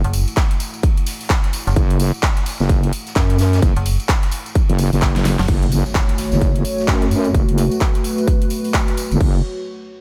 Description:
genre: bass house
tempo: 129 BPM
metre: 4/4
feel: swing 60% on 16ths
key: F# minor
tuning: A4 = 441 Hz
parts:
  - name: dark analog pad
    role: sustained chords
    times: 0.1-9.4 s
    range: A3 to F#5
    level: -28 LUFS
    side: equal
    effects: chorus, sidechain pumping
  - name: metallic FM bass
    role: bass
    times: 0.0-5.5 s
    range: F#1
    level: -20 LUFS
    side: equal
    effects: overdrive, sidechain pumping
  - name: wobble bass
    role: bass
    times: 0.0-9.4 s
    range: F#1 to F#2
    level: -19 LUFS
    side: equal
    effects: chorus, tube saturation, sidechain pumping
  - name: big-room dance drum kit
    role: drums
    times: 0.0-9.3 s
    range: crash cymbal, handclaps, hi-hat, ride cymbal, snare drum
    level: -28 LUFS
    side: equal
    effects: none
  - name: soft-mallet drum kit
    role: drums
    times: 0.1-7.3 s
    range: hi-hat, ride cymbal, snare drum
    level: -40 LUFS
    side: equal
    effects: none
  - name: tambourine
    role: percussion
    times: 0.1-9.2 s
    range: none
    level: -36 LUFS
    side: equal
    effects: none
  - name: electronic kick drum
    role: drums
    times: 0.4-9.3 s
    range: none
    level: -20 LUFS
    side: equal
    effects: none
  - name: impact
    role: sound effects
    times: 5.7-7.3 s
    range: none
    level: -32 LUFS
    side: equal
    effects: none
room: studio reverb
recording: none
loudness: -18 LUFS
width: mono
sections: 0.0-5.5 A section; 5.5-9.2 B section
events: drop 0.0-5.5; drum fill 5.1-5.5; impact 5.5-7.3; filter sweep on wobble bass 5.5-9.2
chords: 0.0 F#m

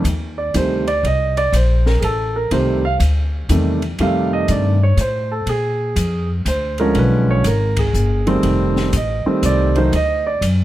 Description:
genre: jazz piano trio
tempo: 121 BPM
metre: 3/4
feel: swing 66% on 8ths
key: F mixolydian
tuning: A4 = 440 Hz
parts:
  - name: warm grand piano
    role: melody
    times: 0.0-10.4 s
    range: C3 to F5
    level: -18 LUFS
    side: right 2 dB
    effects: plate reverb
  - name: upright bass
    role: bass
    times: 0.0-10.6 s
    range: F1 to Bb2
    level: -18 LUFS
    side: left 1 dB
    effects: none
  - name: open jazz drum kit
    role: drums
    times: 0.0-10.6 s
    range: hi-hat, kick drum, ride cymbal, snare drum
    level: -29 LUFS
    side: left 1 dB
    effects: none
room: light reverb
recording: none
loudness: -15 LUFS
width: side -14 dB against mid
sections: 0.0-10.6 A section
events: band accent 7.7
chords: 0.0 F7; 5.5 Bb7; 7.0 Bdim7; 8.4 F7; 9.9 D(b9)

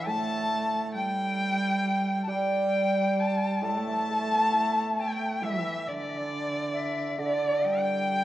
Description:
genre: chinese traditional, Chinese chamber ensemble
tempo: 68 BPM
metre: 4/4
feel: rubato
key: D zhi mode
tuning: A4 = 439 Hz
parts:
  - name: bright erhu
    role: melody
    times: 0.0-8.2 s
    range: D5 to A5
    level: -30 LUFS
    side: left 1 dB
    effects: none
  - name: bright reedy large dizi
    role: second line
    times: 0.0-8.2 s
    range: D5 to A5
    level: -32 LUFS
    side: left 3 dB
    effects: none
  - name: rich cello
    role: second line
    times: 0.0-8.2 s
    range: D3 to A3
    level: -31 LUFS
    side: right 3 dB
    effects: none
  - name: hammered dulcimer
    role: accompaniment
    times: 0.0-8.2 s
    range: A2 to E4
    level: -31 LUFS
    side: right 1 dB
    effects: none
room: moderate concert hall reverb, RT60 2.0 s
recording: worn, warbling old tape, cassette tape, warbly pitch drift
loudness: -25 LUFS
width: side -14 dB against mid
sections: 0.0-8.2 A section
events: none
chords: none

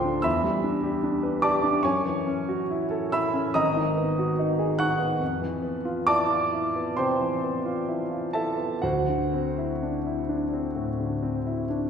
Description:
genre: classical, impressionist solo piano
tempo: 60-77 BPM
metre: 4/4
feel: rubato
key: unclear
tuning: A4 = 441 Hz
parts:
  - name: clear grand piano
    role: solo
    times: 0.0-11.9 s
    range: G#1 to F#6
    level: -23 LUFS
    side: equal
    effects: none
room: wet scoring stage reverb, RT60 1.7 s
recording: recorded in a church or concert hall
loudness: -23 LUFS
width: side -7 dB against mid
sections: 0.0-11.9 A section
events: none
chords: 0.2 Em7; 1.8 F#m7; 3.6 G#m7; 5.2 Fmaj7#11; 8.8 D9

